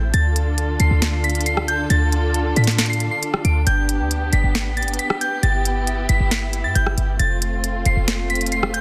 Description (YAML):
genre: hip hop, trap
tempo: 136 BPM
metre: 4/4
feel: half-time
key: unclear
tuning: A4 = 442 Hz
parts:
  - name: glassy synth bell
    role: melody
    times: 0.0-8.8 s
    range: G6 to D7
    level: -27 LUFS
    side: equal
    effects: chorus
  - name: dark symphonic string section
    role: sustained chords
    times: 0.0-8.8 s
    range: D3 to A4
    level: -28 LUFS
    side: equal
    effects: none
  - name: short 808-style bass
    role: bass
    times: 0.0-8.8 s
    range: F1 to A2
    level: -22 LUFS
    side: equal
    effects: none
  - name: trap drum kit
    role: drums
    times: 0.1-8.8 s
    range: hi-hat, rim click, snare drum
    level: -25 LUFS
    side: equal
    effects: soft clipping on snare
room: little or no reverb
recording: dense, heavily limited modern master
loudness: -20 LUFS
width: mono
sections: 0.0-8.8 A section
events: none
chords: 0.1 Dm; 3.7 G; 7.2 F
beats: | 0.14 0.58 1.02 1.46 | 1.90 2.34 2.79 3.23 | 3.67 4.11 4.55 4.99 | 5.43 5.87 6.31 6.75 | 7.20 7.64 8.08 8.52